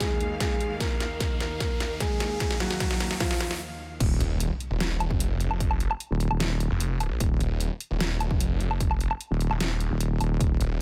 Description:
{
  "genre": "heavy wobble dubstep",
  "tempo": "150 BPM",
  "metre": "4/4",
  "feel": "half-time",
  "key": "Eb minor",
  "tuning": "A4 = 440 Hz",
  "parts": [
    { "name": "dark baby grand piano", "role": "melody", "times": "0.0-3.5 s", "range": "F3 to Bb4", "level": "-34 LUFS", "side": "equal", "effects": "dub echo" },
    { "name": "bright studio string section", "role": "sustained chords", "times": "0.0-4.0 s", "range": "Eb2 to F5", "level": "-39 LUFS", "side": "equal", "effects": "sidechain pumping" },
    { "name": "dubstep drum kit", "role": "drums", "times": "0.0-10.7 s", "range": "crash cymbal, hi-hat, snare drum, woodblock", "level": "-34 LUFS", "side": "equal", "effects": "overdrive, high-pass filter on hats, high-pass filter on snare, high-pass filter on cymbals, high-pass filter on perc, high-pass filter on room" },
    { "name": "electronic kick drum", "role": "drums", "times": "0.0-10.5 s", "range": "none", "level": "-30 LUFS", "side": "equal", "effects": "none" },
    { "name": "riser and impact", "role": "sound effects", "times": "0.1-5.6 s", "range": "none", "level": "-40 LUFS", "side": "equal", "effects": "none" },
    { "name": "wobble bass", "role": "bass", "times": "4.0-10.6 s", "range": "Eb1", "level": "-28 LUFS", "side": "equal", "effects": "chorus, overdrive" },
    { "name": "snarling distorted saw bass", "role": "bass", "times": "4.2-10.8 s", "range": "Eb1 to Bb1", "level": "-29 LUFS", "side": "equal", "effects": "distortion, overdrive" }
  ],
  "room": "little or no reverb",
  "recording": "none",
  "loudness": "-27 LUFS",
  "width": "mono",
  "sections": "0.0-4.0 A section; 4.0-10.8 B section",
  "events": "build-up 0.0-4.0; drum fill 0.0-3.6; riser 0.1-3.6; break 3.6-4.0; drop 4.0-10.8; impact 4.0-5.6",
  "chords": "0.0 Ebmadd9; 4.0 Ebsus2"
}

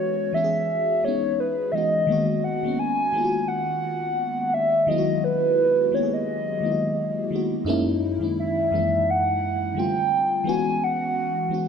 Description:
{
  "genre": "R&B",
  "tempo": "86 BPM",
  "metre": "4/4",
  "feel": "swing 56% on 16ths",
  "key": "G# minor",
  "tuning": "A4 = 441 Hz",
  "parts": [
    { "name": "hollow clarinet-like synth lead", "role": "melody", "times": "0.0-11.7 s", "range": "B4 to G#5", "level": "-23 LUFS", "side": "right 1 dB", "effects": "chorus, phaser, plate reverb, tape echo" },
    { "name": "FM electric piano with soft pad layer", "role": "accompaniment", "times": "0.0-11.7 s", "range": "F#2 to G#4", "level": "-25 LUFS", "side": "left 2 dB", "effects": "chorus, phaser, plate reverb" }
  ],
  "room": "moderate studio reverb, RT60 0.8 s",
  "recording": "none",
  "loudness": "-21 LUFS",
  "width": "side -7 dB against mid",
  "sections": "0.0-11.7 A section",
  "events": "none",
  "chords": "0.0 E69; 2.1 G#m9; 7.7 F#13; 9.8 F69; 10.5 E69"
}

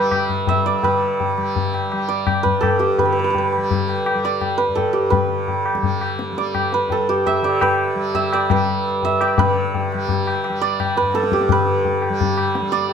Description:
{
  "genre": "indian classical, Hindustani",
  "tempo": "169 BPM",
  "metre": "3/4",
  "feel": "straight",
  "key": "G raga bhupali",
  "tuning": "A4 = 437 Hz",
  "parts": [
    { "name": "santur", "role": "melody", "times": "0.0-12.9 s", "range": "G4 to E5", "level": "-19 LUFS", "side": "right 3 dB", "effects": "none" },
    { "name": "tanpura", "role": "drone", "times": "0.0-12.9 s", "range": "G2 to G3", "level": "-27 LUFS", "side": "left 2 dB", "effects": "none" },
    { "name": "tabla", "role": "percussion", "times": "0.1-12.9 s", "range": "none", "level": "-21 LUFS", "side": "left 6 dB", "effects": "none" }
  ],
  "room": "light reverb",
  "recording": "none",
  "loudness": "-17 LUFS",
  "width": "side -7 dB against mid",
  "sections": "0.8-9.4 A section; 9.4-12.9 B section",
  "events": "none",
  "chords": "none"
}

